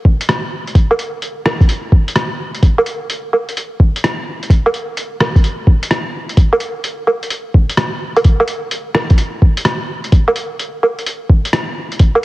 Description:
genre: future garage.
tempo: 128 BPM.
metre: 4/4.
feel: swing 66% on 16ths.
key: none.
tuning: none.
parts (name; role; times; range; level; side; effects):
electronic kick drum; drums; 0.1-12.1 s; none; -9 LUFS; equal; overdrive.
lo-fi sampler-style drum kit; drums; 0.2-12.2 s; hi-hat, rim click, woodblock; -17 LUFS; right 1 dB; overdrive.
room: light reverb.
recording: heavily compressed radio sound, cassette tape.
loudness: -13 LUFS.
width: side -18 dB against mid.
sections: 0.0-12.2 A section.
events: none.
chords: none.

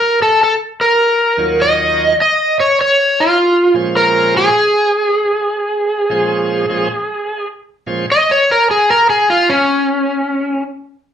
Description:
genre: blues.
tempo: 102 BPM.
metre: 4/4.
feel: swing 65% on 8ths.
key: Bb minor.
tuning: A4 = 441 Hz.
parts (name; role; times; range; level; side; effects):
overdriven slide guitar; melody; 0.0-10.6 s; Db4 to Eb5; -12 LUFS; equal; slapback echo.
bright tonewheel organ; accompaniment; 1.4-8.1 s; Eb2 to Db5; -19 LUFS; right 3 dB; slow rotary speaker, overdrive, slapback echo.
room: moderate club reverb, RT60 0.5 s.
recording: live gig heard through the venue's PA, club reverb, lossy compression artefacts.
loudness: -11 LUFS.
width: side -9 dB against mid.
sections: 0.0-8.1 A section; 8.1-11.1 B section.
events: electric slide guitar solo 8.1-11.1.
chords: 0.0 N.C.; 1.0 Ebm7; 3.4 Bbm7; 8.1 N.C..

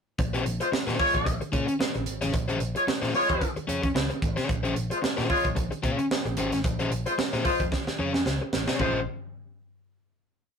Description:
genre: funk.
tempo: 112 BPM.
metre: 4/4.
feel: swing 56% on 16ths.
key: Bb minor.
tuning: A4 = 439 Hz.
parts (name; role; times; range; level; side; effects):
crunchy overdriven guitar; accompaniment; 0.2-9.0 s; Db4 to Db5; -30 LUFS; left 2 dB; none.
vintage muted picked electric bass; bass; 0.2-9.0 s; Ab1 to Bb2; -32 LUFS; equal; none.
crisp fusion drum kit; drums; 0.2-8.9 s; hi-hat, kick drum, snare drum, toms; -29 LUFS; right 2 dB; none.
mellow horn section; second line; 0.6-9.0 s; Ab3 to Db5; -26 LUFS; left 1 dB; none.
room: moderate studio reverb, RT60 0.6 s.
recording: rough rehearsal-room recording, tube saturation.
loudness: -24 LUFS.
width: side -6 dB against mid.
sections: 0.2-8.8 groove; 8.8-10.6 final chord.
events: drum fill 7.7-8.8.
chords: 0.2 Bbm9.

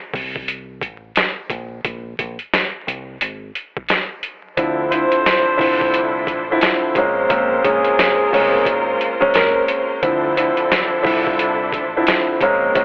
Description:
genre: hip hop, boom-bap hip-hop.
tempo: 88 BPM.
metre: 4/4.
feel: swing 60% on 16ths.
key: unclear.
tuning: A4 = 440 Hz.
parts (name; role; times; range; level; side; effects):
deep dub fingered electric bass; bass; 0.1-12.8 s; G#1 to D2; -34 LUFS; equal; none.
boom bap sampler-style drum kit; drums; 0.1-12.8 s; hi-hat, kick drum, snare drum; -22 LUFS; equal; none.
dark grand piano; accompaniment; 4.6-12.8 s; D3 to E4; -20 LUFS; equal; cassette tape, high-pass filter, low-pass filter.
warm symphonic string section; sustained chords; 4.6-12.8 s; F3 to C5; -27 LUFS; equal; high-pass filter, low-pass filter.
growling tenor saxophone; melody; 4.9-9.7 s; Ab4 to C5; -23 LUFS; equal; high-pass filter, low-pass filter, tape echo.
room: light reverb, studio ambience.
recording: dry, gritty hardware recording, vinyl crackle, telephone sound.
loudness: -18 LUFS.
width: mono.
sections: 0.0-12.8 A section.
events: break 0.0-4.6.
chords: 0.0 N.C.; 1.5 Bbsus2; 4.6 Dm9; 7.0 Bbm9; 10.0 Dm9.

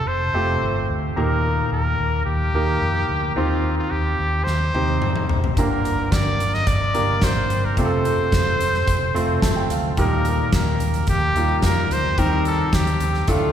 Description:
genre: piano-driven pop.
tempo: 109 BPM.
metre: 4/4.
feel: straight.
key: unclear.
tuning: A4 = 440 Hz.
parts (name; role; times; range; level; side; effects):
bright trumpet; melody; 0.0-13.5 s; F4 to Eb5; -24 LUFS; equal; none.
clear concert grand piano; accompaniment; 0.0-13.5 s; G2 to C6; -24 LUFS; right 1 dB; none.
vintage muted fingered electric bass; bass; 0.1-13.5 s; F1 to F2; -23 LUFS; equal; none.
huge arena drum kit; drums; 4.5-13.4 s; hi-hat, kick drum, snare drum, toms; -23 LUFS; equal; none.
room: wet church reverb, RT60 3.4 s.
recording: recorded in a church or concert hall.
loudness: -18 LUFS.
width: side -9 dB against mid.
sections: 0.0-13.5 A section.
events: drum fill 4.5-5.6; grand piano fill 8.9-10.0.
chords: 0.0 F; 1.2 Eb; 3.4 Cm/Eb; 5.6 Gm; 7.8 F; 10.0 Eb; 12.2 Cm/Eb.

